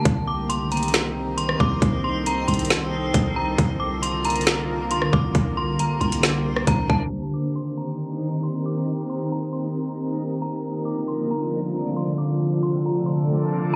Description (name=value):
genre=hip hop, atmospheric cloud-rap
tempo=136 BPM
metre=4/4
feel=half-time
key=C dorian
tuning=A4 = 440 Hz
part: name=metallic FM bell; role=melody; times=0.0-13.8 s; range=A5 to D6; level=-32 LUFS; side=equal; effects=chorus, low-pass filter, digital delay
part: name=warbly tape-like pad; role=sustained chords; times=0.0-13.8 s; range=C2 to Bb5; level=-28 LUFS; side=equal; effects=chorus, built-in reverb, sidechain pumping
part: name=long sustained 808-style bass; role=bass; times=0.1-7.1 s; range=C2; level=-28 LUFS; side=equal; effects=none
part: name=trap drum kit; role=drums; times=0.1-7.0 s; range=hi-hat, kick drum, rim click, snare drum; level=-24 LUFS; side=equal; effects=none
part: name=backwards swelling texture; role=texture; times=0.6-13.8 s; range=C3 to D5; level=-33 LUFS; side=equal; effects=built-in reverb
room=light reverb, digital ambience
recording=recorded on a phone in the room, club reverb, compression, low-pass filter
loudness=-23 LUFS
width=mono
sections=0.0-7.1 A section; 7.1-13.8 B section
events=filter sweep 7.1-13.8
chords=0.1 Cm7; 3.6 Bb/C; 7.1 Cm7; 10.6 Bbmaj7/C